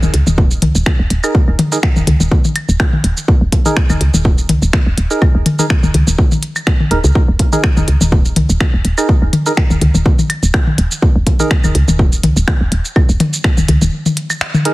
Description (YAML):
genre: minimal techno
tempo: 124 BPM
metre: 4/4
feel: swing 54% on 16ths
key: unclear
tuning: A4 = 440 Hz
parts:
  - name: woody FM bass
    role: bass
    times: 0.0-13.9 s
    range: Eb1 to Db2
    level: -14 LUFS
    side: equal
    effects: sidechain pumping
  - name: minimal click drum kit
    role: drums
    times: 0.0-14.7 s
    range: finger snaps, hi-hat, shaker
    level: -20 LUFS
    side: right 1 dB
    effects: small room ambience
  - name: electronic toms and claves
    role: percussion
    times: 0.0-14.6 s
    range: none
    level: -17 LUFS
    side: left 2 dB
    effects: small room ambience, tape echo
  - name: electronic kick drum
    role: drums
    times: 0.4-13.5 s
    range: none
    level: -12 LUFS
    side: equal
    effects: small room ambience
  - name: percussive organ stab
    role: stabs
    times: 1.2-11.5, 14.7 s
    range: Eb4 to Bb4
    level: -20 LUFS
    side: right 2 dB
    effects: wide subtle chorus, tape echo
room: little or no reverb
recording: heavily compressed radio sound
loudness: -11 LUFS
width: side -19 dB against mid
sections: 0.0-14.7 A section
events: break 13.9-14.7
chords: 0.0 Ebsus4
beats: 0.38 0.86 | 1.35 1.83 2.31 2.80 | 3.28 3.77 4.25 4.73 | 5.22 5.70 6.18 6.67 | 7.15 7.64 8.12 8.61 | 9.09 9.57 10.06 10.54 | 11.02 11.51 11.99 12.48 | 12.96 13.44 13.93 14.41